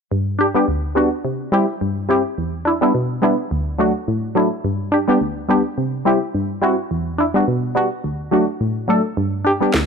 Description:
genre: dancehall.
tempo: 106 BPM.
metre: 4/4.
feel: swing 56% on 16ths.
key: unclear.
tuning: A4 = 444 Hz.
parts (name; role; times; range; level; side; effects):
wavetable chord stab; accompaniment; 0.1-9.9 s; D2 to A4; -17 LUFS; equal; none.
electronic snare drum; drums; 9.7-9.9 s; none; -16 LUFS; equal; none.
room: light reverb.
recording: echo-heavy mix.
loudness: -17 LUFS.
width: side -6 dB against mid.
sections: 0.1-9.9 A section.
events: none.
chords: 0.1 G; 1.2 C; 2.4 Em7; 3.5 D; 4.6 G; 5.8 C; 6.9 Em7; 8.0 D; 9.2 G.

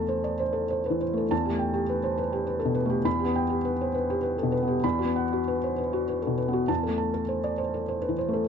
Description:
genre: neoclassical minimalist piano.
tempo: 96-105 BPM.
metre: 3/4.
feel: rubato.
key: E minor.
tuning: A4 = 444 Hz.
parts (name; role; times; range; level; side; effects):
felt-muted upright piano; solo; 0.0-8.5 s; E2 to B5; -24 LUFS; equal; none.
room: light reverb.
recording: nothing above 7.6 kHz.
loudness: -24 LUFS.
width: side -7 dB against mid.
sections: 0.0-8.5 A section.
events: none.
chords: 0.0 Am/E; 1.3 Em; 4.8 Bsus4/E; 6.7 Am/E.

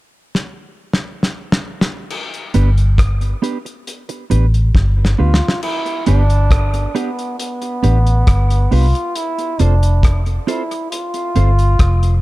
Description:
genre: dub reggae.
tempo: 68 BPM.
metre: 4/4.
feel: straight.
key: G mixolydian.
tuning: A4 = 440 Hz.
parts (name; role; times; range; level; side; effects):
cloth-damped thuddy drum kit; drums; 0.3-12.2 s; crash cymbal, hi-hat, kick drum, rim click, snare drum; -18 LUFS; equal; none.
mellow electric guitar; accompaniment; 2.5-11.5 s; B3 to C5; -23 LUFS; right 5 dB; dub echo.
vintage muted fingered electric bass; bass; 2.6-12.2 s; F1 to D2; -13 LUFS; equal; none.
warm trombone; melody; 5.2-12.2 s; B3 to F4; -22 LUFS; right 1 dB; dub echo.
room: small room ambience.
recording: none.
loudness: -13 LUFS.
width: side -18 dB against mid.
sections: 0.0-2.1 A section; 2.1-5.6 B section; 5.6-12.2 C section.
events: drum fill 0.3-2.1, 4.7-5.6.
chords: 0.0 N.C.; 2.1 G; 9.2 F.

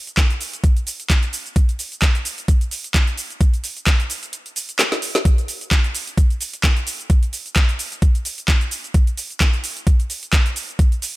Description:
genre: house.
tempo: 130 BPM.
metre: 4/4.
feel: swing 56% on 16ths.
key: none.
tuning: none.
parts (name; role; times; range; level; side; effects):
garage drum kit; drums; 0.1-11.1 s; handclaps, hi-hat, shaker, snare drum; -22 LUFS; right 1 dB; overdrive.
electronic kick drum; drums; 0.2-10.9 s; none; -15 LUFS; equal; overdrive.
room: little or no reverb.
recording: none.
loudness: -17 LUFS.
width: side -19 dB against mid.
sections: 0.0-11.2 A section.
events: kick drops out 4.3-5.3; drum fill 4.8-5.3.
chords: none.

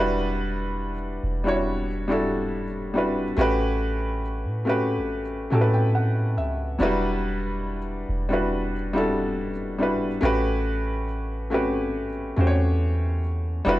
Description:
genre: contemporary R&B.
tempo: 70 BPM.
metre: 4/4.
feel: straight.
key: unclear.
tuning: A4 = 439 Hz.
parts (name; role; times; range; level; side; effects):
felt-muted upright piano; accompaniment; 0.0-13.8 s; F#3 to A5; -24 LUFS; equal; none.
soft 808-style bass; bass; 0.0-13.8 s; E1 to A2; -27 LUFS; equal; none.
room: studio reverb.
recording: dry, gritty hardware recording, cassette tape.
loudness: -22 LUFS.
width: side -16 dB against mid.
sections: 0.0-13.8 A section.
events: felt piano fill 5.1-6.8.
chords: 0.0 Em9; 3.4 A13; 6.8 Em9; 10.2 A13.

